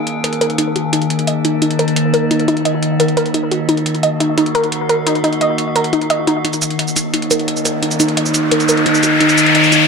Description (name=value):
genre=dark technical drum and bass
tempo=174 BPM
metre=4/4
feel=straight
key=Eb minor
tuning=A4 = 439 Hz
part: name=metallic inharmonic drone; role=sustained chords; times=0.0-9.9 s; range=Eb3 to Ab4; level=-17 LUFS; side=equal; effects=chorus, built-in reverb, phaser
part: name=electronic hi-hat and shaker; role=drums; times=0.1-9.8 s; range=none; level=-20 LUFS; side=right 1 dB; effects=none
part: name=warbly dusty pluck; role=arpeggios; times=0.2-9.8 s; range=Eb4 to Eb5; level=-17 LUFS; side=equal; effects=chorus, ping-pong delay
part: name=riser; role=sound effects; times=7.5-9.9 s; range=none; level=-15 LUFS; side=left 2 dB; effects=none
room=wet lush hall reverb, RT60 1.7 s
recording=none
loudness=-13 LUFS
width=side -5 dB against mid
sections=0.0-6.4 A section; 6.4-9.9 B section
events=filter sweep on synth arpeggio sound 0.0-6.4, 6.4-9.9; build-up 6.4-9.9; filter sweep on synth drone 6.4-9.9; riser 7.5-9.9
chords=0.0 Ebm; 6.4 Eb5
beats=0.24 0.58 | 0.93 1.27 1.62 1.96 | 2.31 2.65 3.00 3.34 | 3.69 4.03 4.38 4.72 | 5.07 5.41 5.76 6.10 | 6.45 6.79 7.14 7.48 | 7.83 8.17 8.52 8.86 | 9.21 9.55